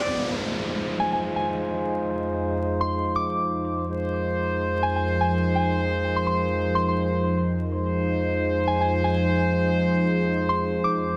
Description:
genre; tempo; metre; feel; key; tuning
breakbeat; 125 BPM; 4/4; swing 55% on 16ths; unclear; A4 = 439 Hz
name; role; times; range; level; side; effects
lush unison pad; sustained chords; 0.0-11.2 s; F2 to Bb4; -29 LUFS; equal; chorus
mellow brass ensemble; stabs; 0.0-11.2 s; Ab3 to D5; -28 LUFS; equal; dub echo
downlifter; sound effects; 0.0-3.9 s; none; -34 LUFS; equal; none
soft synth bell; melody; 1.0-11.2 s; Ab5 to D6; -31 LUFS; equal; chorus, small speaker sound, dub echo
room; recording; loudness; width
moderate plate reverb, RT60 1.4 s, studio reverb; dense, heavily limited modern master, vinyl crackle; -24 LUFS; mono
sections
0.0-11.2 A section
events
none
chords
0.0 Fm7

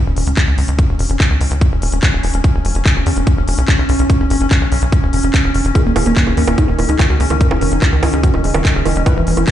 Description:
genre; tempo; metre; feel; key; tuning
psychedelic trance; 145 BPM; 4/4; straight; unclear; A4 = 440 Hz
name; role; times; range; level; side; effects
pulsing gated texture; sustained chords; 0.0-9.5 s; Db4; -21 LUFS; left 2 dB; chorus, built-in reverb, sidechain pumping
tight sequencer bass; bass; 0.1-9.4 s; Eb1 to E2; -16 LUFS; equal; none
drum and bass drum kit; drums; 0.2-9.5 s; bongos, handclaps, hi-hat; -21 LUFS; right 2 dB; none
electronic kick drum; drums; 0.4-9.5 s; none; -12 LUFS; equal; none
overdriven synth lead; melody; 5.8-9.5 s; Bb3 to B4; -21 LUFS; equal; chorus, phaser, sidechain pumping, tape echo
woody wave-folded pluck; riff; 5.8-9.5 s; Db3 to E3; -22 LUFS; moving between left 1 dB and right 7 dB; chorus, auto-pan, sidechain pumping, tape echo
room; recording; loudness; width
light reverb, digital ambience; played on a big sound system in a bare room, large studio reverb, nothing above 10.6 kHz; -12 LUFS; side -11 dB against mid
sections
0.0-9.5 A section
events
none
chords
0.0 Dbsus2/Eb; 2.4 E5; 5.8 Eb5

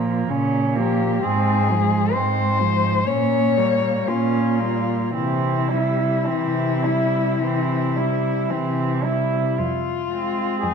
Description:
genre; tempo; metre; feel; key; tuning
classical, lyrical piece for cello ensemble; 52-67 BPM; 4/4; rubato; F minor; A4 = 440 Hz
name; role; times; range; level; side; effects
muted cello; melody; 0.0-10.7 s; E4 to Db5; -23 LUFS; left 9 dB; none
muted cello; second line; 0.0-10.7 s; Ab3 to E4; -25 LUFS; right 7 dB; none
muted cello; accompaniment; 0.0-10.7 s; Db3 to Bb3; -26 LUFS; equal; none
muted cello; bass; 0.0-10.7 s; F2 to C3; -24 LUFS; right 2 dB; none
room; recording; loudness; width
moderate scoring stage reverb, RT60 1.5 s; dark, warm production; -18 LUFS; side -6 dB against mid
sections
0.0-10.7 A section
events
none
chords
0.0 Bbm; 1.2 Fm/Ab; 3.1 Gdim/Bb; 5.1 C; 9.6 Fm

